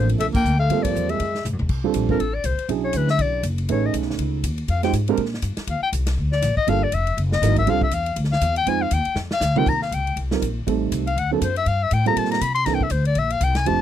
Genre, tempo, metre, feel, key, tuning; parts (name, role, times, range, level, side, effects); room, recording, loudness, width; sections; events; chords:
jazz, small-group swing and bop; 241 BPM; 4/4; swing 59% on 8ths; F major; A4 = 436 Hz
clear clarinet; melody; 0.0-13.8 s; A4 to C6; -23 LUFS; left 5 dB
warm tenor saxophone; second line; 0.0-1.4 s; F3 to Bb3; -26 LUFS; right 1 dB
dark upright piano; accompaniment; 0.0-13.8 s; E3 to C5; -23 LUFS; right 12 dB
upright bass; bass; 0.0-13.8 s; F1 to C3; -23 LUFS; left 1 dB
swinging big-band drum kit; drums; 0.1-13.7 s; crash cymbal, hi-hat, kick drum, ride cymbal, snare drum, toms; -30 LUFS; left 1 dB
little or no reverb; dry, close 1970s-style studio recording; -19 LUFS; side -10 dB against mid
0.0-1.7 A section; 1.7-9.7 B section; 9.7-13.8 B section
band accent 0.3; drum fill 1.4, 9.2-9.7; clarinet solo 1.7-13.8
0.0 Bbmaj9; 0.7 Gm11; 1.2 Gbsus2; 1.7 F69; 2.7 E13; 3.7 Amaj9#11; 4.7 Fm9; 5.2 Gm; 5.7 Eb5; 6.7 Gm9; 7.2 Gb13; 7.7 F69; 8.7 Fm7; 9.2 Bb69; 9.7 Eb6; 10.7 Am7b5; 11.2 D7b13; 11.7 Gm11; 12.7 C13